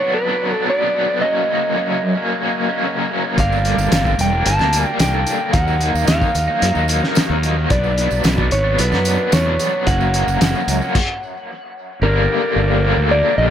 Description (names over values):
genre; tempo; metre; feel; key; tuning
psychedelic rock; 111 BPM; 4/4; straight; unclear; A4 = 439 Hz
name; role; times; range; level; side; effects
electric slide guitar; melody; 0.0-13.5 s; Bb4 to A5; -21 LUFS; equal; dub echo
combo organ; sustained chords; 0.0-13.5 s; Bb3 to D5; -29 LUFS; right 5 dB; none
raw garage guitar; riff; 0.0-13.5 s; F#2 to Eb4; -20 LUFS; left 1 dB; overdrive, tremolo, dub echo
fuzz fingered electric bass; bass; 3.4-13.5 s; E1 to Gb2; -19 LUFS; equal; overdrive
cloth-damped thuddy drum kit; drums; 3.4-11.1 s; crash cymbal, hi-hat, kick drum, snare drum; -19 LUFS; equal; none
tambourine; percussion; 3.4-10.9 s; none; -34 LUFS; right 14 dB; none
room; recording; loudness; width
light reverb, small room reverb; echo-heavy mix; -15 LUFS; side -9 dB against mid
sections
0.0-12.0 A section; 12.0-13.5 B section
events
stop 11.0-12.0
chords
0.0 Bm; 1.2 F#add9; 3.4 Gm; 5.5 Ebmadd9; 7.7 Bmadd9; 9.9 F#add9; 11.0 N.C.; 12.0 Gm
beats
0.14 0.68 | 1.22 1.76 2.30 2.84 | 3.38 3.92 4.46 5.00 | 5.54 6.08 6.62 7.17 | 7.71 8.25 8.79 9.33 | 9.87 10.41 10.95 11.49 | 12.03 12.57 13.11